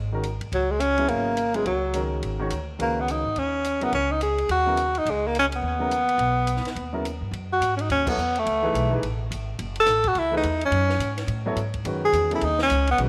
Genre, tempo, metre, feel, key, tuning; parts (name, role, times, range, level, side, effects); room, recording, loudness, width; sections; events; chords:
modal jazz; 212 BPM; 4/4; swing 61% on 8ths; F# dorian from 7.3 s; A4 = 442 Hz
upright bass; bass; 0.0-13.1 s; F#1 to A2; -31 LUFS; equal
warm grand piano; accompaniment; 0.1-13.1 s; C#3 to C#5; -32 LUFS; equal
compact cocktail drum kit; drums; 0.2-13.1 s; crash cymbal, hi-hat, kick drum, ride cymbal, snare drum; -40 LUFS; equal
warm tenor saxophone; melody; 0.5-13.0 s; F#3 to A4; -25 LUFS; equal; tape echo
light reverb, studio reverb; -24 LUFS; mono
0.0-7.3 A section; 7.3-13.1 B section
band accent 8.0
0.0 C#m69; 2.8 G#m/C# (rootless); 7.3 F#m9